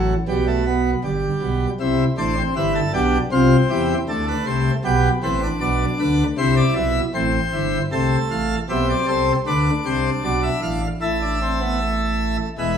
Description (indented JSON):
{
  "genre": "classical, baroque-style 4-part fugue for pipe organ",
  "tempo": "78 BPM",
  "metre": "4/4",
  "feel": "straight",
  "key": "C major, A minor from 7.9 s",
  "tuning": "A4 = 443 Hz",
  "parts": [
    { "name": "pipe organ, plenum", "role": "solo", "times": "0.0-12.8 s", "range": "E1 to F5", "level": "-18 LUFS", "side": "equal", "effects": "none" }
  ],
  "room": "wet stone room reverb, RT60 1.1 s",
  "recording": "heard from further back in the room",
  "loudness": "-18 LUFS",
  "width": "side -8 dB against mid",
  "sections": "0.0-7.9 A section; 7.9-12.8 B section",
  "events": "none",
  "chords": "0.3 G/B; 1.8 C; 3.3 F/C; 4.9 G; 6.4 C; 7.9 Am; 9.5 Bdim; 11.0 Esus4/A"
}